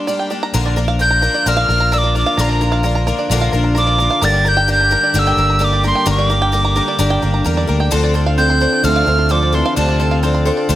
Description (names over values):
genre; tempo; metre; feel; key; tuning
folk; 130 BPM; 4/4; straight; unclear; A4 = 440 Hz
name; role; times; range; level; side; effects
picked twelve-string acoustic guitar; accompaniment; 0.0-10.8 s; G2 to Bb4; -20 LUFS; left 4 dB; none
bluegrass banjo; arpeggios; 0.0-10.8 s; Bb4 to C6; -23 LUFS; right 4 dB; none
warm brass ensemble; sustained chords; 0.5-10.8 s; D3 to G4; -25 LUFS; right 1 dB; none
fingered electric bass; bass; 0.5-10.8 s; G1 to E2; -17 LUFS; equal; none
breathy bright tin whistle; melody; 1.0-10.2 s; A5 to A6; -16 LUFS; equal; none
warm French horn; second line; 8.4-10.2 s; C3 to C4; -22 LUFS; right 6 dB; none
room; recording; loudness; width
light reverb, studio reverb; none; -13 LUFS; side -13 dB against mid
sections
0.5-10.8 A section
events
break 0.0-0.5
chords
0.0 Gm; 0.5 Bb; 4.2 Gm; 7.9 Dm7